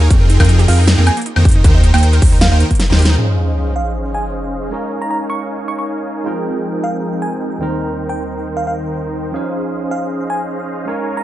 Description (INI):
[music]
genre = future bass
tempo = 156 BPM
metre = 4/4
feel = swing 53% on 16ths, half-time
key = Db lydian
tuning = A4 = 440 Hz
[part]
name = wide unison pluck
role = arpeggios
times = 0.0-3.1 s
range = Bb3 to Eb5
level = -25 LUFS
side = right 4 dB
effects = sidechain pumping, tape echo
[part]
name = supersaw chords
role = riff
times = 0.0-11.2 s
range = Eb3 to Ab5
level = -21 LUFS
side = equal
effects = sidechain pumping, low-pass filter
[part]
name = saturated sub bass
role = bass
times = 0.0-3.2 s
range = Eb2 to F2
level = -11 LUFS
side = equal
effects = sidechain pumping
[part]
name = big-room dance drum kit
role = drums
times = 0.1-3.1 s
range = hi-hat, snare drum, woodblock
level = -19 LUFS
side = equal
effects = none
[part]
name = electronic kick drum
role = drums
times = 0.1-2.8 s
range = none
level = -12 LUFS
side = equal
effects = none
[part]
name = bell-like FM electric piano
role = melody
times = 0.7-11.2 s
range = F5 to Db6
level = -24 LUFS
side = right 2 dB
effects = chorus, cassette tape, sidechain pumping
[part]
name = barky tine electric piano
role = accompaniment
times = 3.2-11.2 s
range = Eb2 to G5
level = -25 LUFS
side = right 3 dB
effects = sidechain pumping, tape echo
[part]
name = sub drop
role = sound effects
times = 3.2-4.7 s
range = none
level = -19 LUFS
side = equal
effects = none
[sound]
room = light reverb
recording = nothing above 10.9 kHz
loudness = -13 LUFS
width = side -14 dB against mid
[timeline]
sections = 0.0-3.2 A section; 3.2-11.2 B section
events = drop 0.0-3.2; drum fill 2.8-3.2; band accent 3.1; impact 3.2-4.7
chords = 0.1 Fm11; 1.5 Cm7/Eb; 3.2 Dbmaj9; 4.7 Eb7sus4; 6.3 Fm11; 7.6 Cm7/Eb; 9.3 Dbmaj9